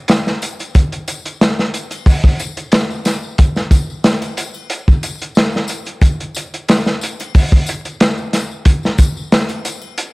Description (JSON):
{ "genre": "trip hop", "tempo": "91 BPM", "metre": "4/4", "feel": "straight", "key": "none", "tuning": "none", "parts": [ { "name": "crunchy breakbeat drum kit", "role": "drums", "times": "0.1-10.1 s", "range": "hi-hat, kick drum, snare drum", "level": "-13 LUFS", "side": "equal", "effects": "vintage 12-bit sampler grit" }, { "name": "tambourine and triangle", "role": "percussion", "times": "0.1-10.1 s", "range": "none", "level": "-31 LUFS", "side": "left 5 dB", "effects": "none" } ], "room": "small room reverb", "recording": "vinyl crackle", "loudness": "-13 LUFS", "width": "side -26 dB against mid", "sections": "0.0-10.1 A section", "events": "none", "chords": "none", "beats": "0.09 | 0.75 1.41 2.07 2.73 | 3.38 4.04 4.70 5.36 | 6.02 6.68 7.34 8.00 | 8.66 9.32 9.98" }